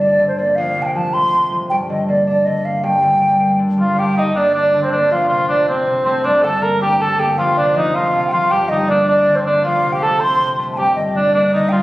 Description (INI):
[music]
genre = celtic folk, Celtic jig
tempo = 106 BPM (dotted quarters)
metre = 6/8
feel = straight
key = G minor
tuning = A4 = 439 Hz
[part]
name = hollow wooden flute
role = melody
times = 0.0-11.8 s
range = C5 to C6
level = -16 LUFS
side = right 1 dB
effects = none
[part]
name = concert harp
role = accompaniment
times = 0.0-11.8 s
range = F2 to D4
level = -20 LUFS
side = left 1 dB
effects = none
[part]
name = mellow cor anglais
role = second line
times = 3.8-11.8 s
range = C4 to C5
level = -19 LUFS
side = equal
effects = none
[sound]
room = light reverb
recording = recorded on a phone in the room, studio reverb, compression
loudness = -13 LUFS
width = side -17 dB against mid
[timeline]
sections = 0.0-4.0 A section; 4.0-11.8 A section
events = none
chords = 0.0 Gm; 0.6 F; 1.7 Gm; 5.1 F; 6.2 Gm; 7.4 F; 8.5 Gm; 9.6 F; 10.8 Gm